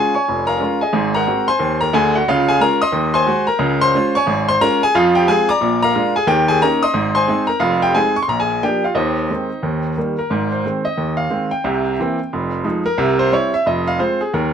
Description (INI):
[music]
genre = jazz, stride piano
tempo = 179 BPM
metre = 4/4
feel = swing 63% on 8ths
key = Db major, Ab major from 4.9 s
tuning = A4 = 443 Hz
[part]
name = clear baby grand piano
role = solo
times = 0.0-14.5 s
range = F1 to Eb6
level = -15 LUFS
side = equal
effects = none
[sound]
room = light reverb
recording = none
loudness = -15 LUFS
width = side -8 dB against mid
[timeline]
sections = 0.0-10.3 A section; 10.3-14.5 B section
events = none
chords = 0.3 Db/F; 0.9 Ab9; 2.3 Db; 2.9 Ab7/Eb; 3.6 Db; 4.9 Fm; 5.6 Bb7; 6.3 Eb7; 7.0 Ab; 7.6 Fm7; 8.3 Bb7; 9.0 Ab/Eb; 9.6 Eb; 10.3 Ab; 11.6 C7; 12.3 Fm7; 13.0 C; 13.7 Fm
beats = 0.26 0.60 | 0.93 1.26 1.60 1.93 | 2.27 2.60 2.94 3.27 | 3.60 3.94 4.27 4.61 | 4.94 5.28 5.61 5.95 | 6.28 6.62 6.95 7.29 | 7.62 7.96 8.29 8.63 | 8.96 9.30 9.63 9.97 | 10.30 10.63 10.97 11.31 | 11.64 11.98 12.31 12.65 | 12.98 13.32 13.65 13.99 | 14.32